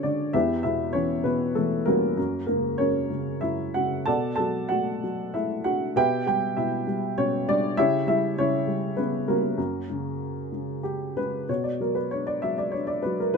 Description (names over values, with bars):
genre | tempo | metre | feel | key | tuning
classical, lyrical solo piano | 97 BPM | 3/4 | uneven beats, rubato | unclear | A4 = 440 Hz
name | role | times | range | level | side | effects
dark upright piano | solo | 0.0-13.4 s | E2 to A5 | -23 LUFS | equal | none
room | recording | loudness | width
little or no reverb | close, detailed microphones | -23 LUFS | side -5 dB against mid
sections
0.0-11.5 A section; 11.5-13.4 B section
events
none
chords
0.3 Em; 2.2 F#; 4.1 Bm7; 6.0 Em/B; 7.8 C#dim; 9.6 F#; 11.5 Bm